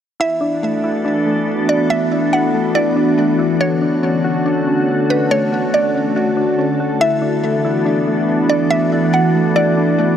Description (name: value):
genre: hip hop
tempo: 141 BPM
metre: 4/4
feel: half-time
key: unclear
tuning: A4 = 440 Hz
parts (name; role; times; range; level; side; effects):
- mallet-like synth pluck; melody; 0.2-10.2 s; B4 to F#5; -20 LUFS; right 1 dB; chorus, phaser, tape echo
- glassy FM pad; sustained chords; 0.5-10.2 s; D3 to A4; -17 LUFS; left 1 dB; ensemble chorus, built-in reverb
- soft electric-piano-like synth keys; arpeggios; 0.2-10.2 s; A3 to F#4; -19 LUFS; equal; chorus, tape echo
room: wet huge ambient reverb, RT60 6.8 s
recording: none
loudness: -14 LUFS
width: side -9 dB against mid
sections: 0.2-10.2 A section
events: none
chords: 0.2 E9sus4; 3.6 Dmaj7; 7.0 E9sus4